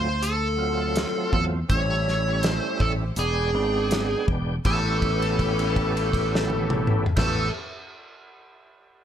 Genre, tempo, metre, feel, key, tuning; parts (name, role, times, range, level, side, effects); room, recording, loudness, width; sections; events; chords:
straight-eighth soul blues; 81 BPM; 4/4; swing 53% on 16ths; A mixolydian; A4 = 439 Hz
smooth overdriven lead guitar; melody; 0.0-7.5 s; G#4 to C#5; -26 LUFS; left 1 dB
percussive tonewheel organ; accompaniment; 0.0-7.5 s; F#3 to G5; -30 LUFS; right 3 dB; overdrive, chorus vibrato, slow rotary speaker
rich studio string section; sustained chords; 0.0-7.5 s; C#4 to G5; -37 LUFS; left 4 dB
fingered electric bass; bass; 0.0-7.5 s; E1 to E2; -26 LUFS; equal
warm soul drum kit; drums; 0.2-7.4 s; crash cymbal, hi-hat, kick drum, snare drum, toms; -27 LUFS; equal
light reverb; -21 LUFS; side -9 dB against mid
0.0-4.7 A section; 4.7-7.6 B section
held note 4.7-7.2
0.0 D7#9; 1.7 A7#9; 3.2 E7#9; 4.7 A9